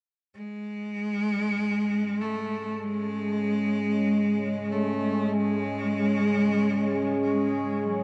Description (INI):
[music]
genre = dark ambient drone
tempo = free time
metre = none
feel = none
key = unclear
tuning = A4 = 440 Hz
[part]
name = clear cello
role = melody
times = 0.3-8.0 s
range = F#3 to A3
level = -29 LUFS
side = equal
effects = tape echo
[part]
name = deep dark ambient pad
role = sustained chords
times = 1.3-8.0 s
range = G#3 to C#5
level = -30 LUFS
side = equal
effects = chorus, built-in reverb
[sound]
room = wet cathedral reverb, RT60 6.9 s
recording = nothing above 10.8 kHz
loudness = -27 LUFS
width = mono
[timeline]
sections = 0.0-8.0 A section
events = fade-out 7.0-8.0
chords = 0.0 C#5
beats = free time